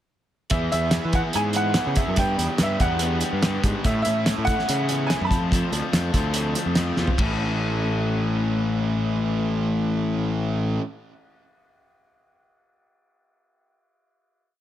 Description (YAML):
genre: indie rock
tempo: 144 BPM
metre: 4/4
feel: straight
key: A major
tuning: A4 = 440 Hz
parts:
  - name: bright upright piano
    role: melody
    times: 0.5-6.7 s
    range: E5 to B5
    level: -27 LUFS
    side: right 1 dB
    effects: none
  - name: overdriven electric guitar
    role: riff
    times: 0.5-10.8 s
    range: A2 to A4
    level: -29 LUFS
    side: left 9 dB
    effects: spring reverb
  - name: thick fuzz guitar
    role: riff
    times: 0.5-10.8 s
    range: A2 to C#5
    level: -30 LUFS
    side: right 7 dB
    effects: distortion, wide subtle chorus
  - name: fuzz picked electric bass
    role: bass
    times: 0.5-10.8 s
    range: A1 to E3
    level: -25 LUFS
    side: equal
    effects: overdrive
  - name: cloth-damped thuddy drum kit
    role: drums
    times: 0.5-7.3 s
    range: hi-hat, kick drum, ride cymbal, snare drum, toms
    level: -25 LUFS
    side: equal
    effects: none
room: small room ambience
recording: none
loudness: -20 LUFS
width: side -11 dB against mid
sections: 0.5-7.2 pre-chorus; 7.2-10.5 final chord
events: drum fill 7.0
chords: 0.5 E; 2.2 G; 3.9 Aadd9; 5.3 F; 7.2 A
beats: | 0.52 0.94 1.36 1.77 | 2.19 2.61 3.02 3.44 | 3.86 4.28 4.69 5.11 | 5.53 5.94 6.36 6.77 | 7.19 7.60 8.02 8.43 | 8.85 9.26 9.68 10.09